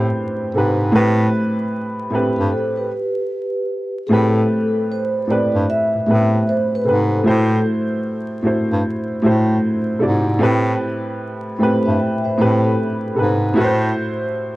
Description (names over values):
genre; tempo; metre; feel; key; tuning
lo-fi hip hop; 76 BPM; 4/4; swing 64% on 16ths; A dorian; A4 = 440 Hz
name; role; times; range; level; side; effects
dark upright piano; accompaniment; 0.0-14.6 s; A2 to D5; -18 LUFS; equal; cassette tape
breathy bass clarinet; bass; 0.0-13.9 s; G2 to A2; -19 LUFS; equal; none
vibraphone with soft mallets; second line; 2.4-3.9, 11.6-13.5 s; G4 to G5; -23 LUFS; equal; tape echo
vibraphone with soft mallets; melody; 4.1-7.6 s; G#4 to E5; -21 LUFS; equal; tape echo
room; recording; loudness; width
moderate studio reverb, RT60 0.6 s; vinyl crackle; -16 LUFS; side -18 dB against mid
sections
0.0-4.1 A section; 4.1-14.6 B section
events
stop 2.5-4.1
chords
0.0 Am7; 0.9 Am9; 4.1 Am7; 7.3 D7; 10.4 Am7; 13.6 F#m7b5